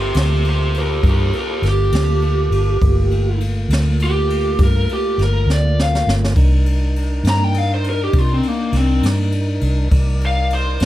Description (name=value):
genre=slow blues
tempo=68 BPM (dotted quarters)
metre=12/8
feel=straight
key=G minor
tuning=A4 = 440 Hz
part: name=lead guitar through a small cranked amp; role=melody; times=0.0-10.8 s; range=Bb3 to Bb5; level=-20 LUFS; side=equal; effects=overdrive
part: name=tonewheel organ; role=sustained chords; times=0.0-10.9 s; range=A3 to D5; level=-27 LUFS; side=right 1 dB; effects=overdrive, slow rotary speaker
part: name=vintage muted fingered electric bass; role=bass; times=0.0-10.9 s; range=G1 to C3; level=-17 LUFS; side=equal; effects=none
part: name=jazz brush drum kit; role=drums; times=0.1-10.9 s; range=kick drum, ride cymbal, snare drum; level=-21 LUFS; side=equal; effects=none
room=light reverb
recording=dark, warm production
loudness=-14 LUFS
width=side -14 dB against mid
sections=0.0-10.9 A section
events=lead electric guitar solo 0.0-10.9; drum fill 5.5-6.4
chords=0.0 Gm7; 6.4 Cm7